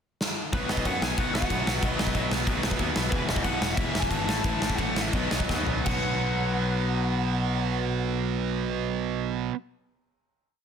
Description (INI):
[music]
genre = punk rock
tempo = 157-186 BPM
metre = 4/4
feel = straight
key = B mixolydian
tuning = A4 = 440 Hz
[part]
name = big rock drum kit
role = drums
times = 0.2-6.0 s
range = crash cymbal, kick drum, snare drum, toms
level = -28 LUFS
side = equal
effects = none
[part]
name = lead guitar through a small cranked amp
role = melody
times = 0.5-9.5 s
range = B4 to A5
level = -33 LUFS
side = left 2 dB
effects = overdrive
[part]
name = crunchy overdriven guitar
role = riff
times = 0.5-9.6 s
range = E2 to B3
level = -33 LUFS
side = left 13 dB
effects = none
[part]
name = tight distorted guitar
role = riff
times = 0.5-9.6 s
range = E2 to B3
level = -30 LUFS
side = right 13 dB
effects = distortion
[part]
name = modern bright picked electric bass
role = bass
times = 0.5-9.5 s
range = E1 to F#2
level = -31 LUFS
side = equal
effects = none
[sound]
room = little or no reverb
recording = dense, heavily limited modern master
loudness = -24 LUFS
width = side -7 dB against mid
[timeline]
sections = 0.0-0.5 pickup bar; 0.5-5.9 chorus; 5.9-8.9 final chord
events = drum fill 0.2-0.5, 5.5-5.9; slowing down 3.1-5.9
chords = 0.0 N.C.; 0.5 B; 3.1 E5; 4.3 A5; 5.1 B; 5.9 B5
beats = 0.20 | 0.53 0.85 1.18 1.50 | 1.83 2.15 2.48 2.80 | 3.12 3.45 3.77 4.10 | 4.44 4.78 5.13 5.50 | 5.87 6.25 6.63 7.01 | 7.38 7.76 8.15 8.53